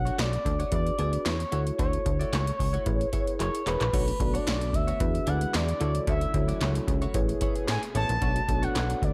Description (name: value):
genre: early-eighties boogie funk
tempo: 112 BPM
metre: 4/4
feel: straight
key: B dorian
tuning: A4 = 439 Hz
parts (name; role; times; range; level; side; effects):
- expressive synth lead; melody; 0.0-9.1 s; B4 to A5; -34 LUFS; equal; chorus, slapback echo
- mellow tine electric piano; accompaniment; 0.0-9.1 s; D4 to D5; -37 LUFS; equal; none
- plucky analog bass; bass; 0.0-9.1 s; E1 to A2; -31 LUFS; equal; none
- direct-recorded clean electric guitar; riff; 0.1-9.1 s; A3 to D5; -42 LUFS; equal; lush chorus
- electro analog drum machine; drums; 0.1-9.1 s; crash cymbal, handclaps, hi-hat, kick drum, snare drum; -32 LUFS; equal; gated reverb
- warm analog pad; sustained chords; 3.9-9.1 s; B2 to G#4; -41 LUFS; equal; none
room: little or no reverb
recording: none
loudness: -27 LUFS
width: mono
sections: 0.0-3.9 A section; 3.9-9.1 B section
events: drum fill 3.4-3.9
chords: 0.0 Bm9; 0.7 E7; 1.5 Dmaj9; 2.9 Amaj9; 3.4 F#9; 3.9 Bm9; 5.0 E7; 5.8 Dmaj9; 7.1 Amaj9; 8.2 Bm9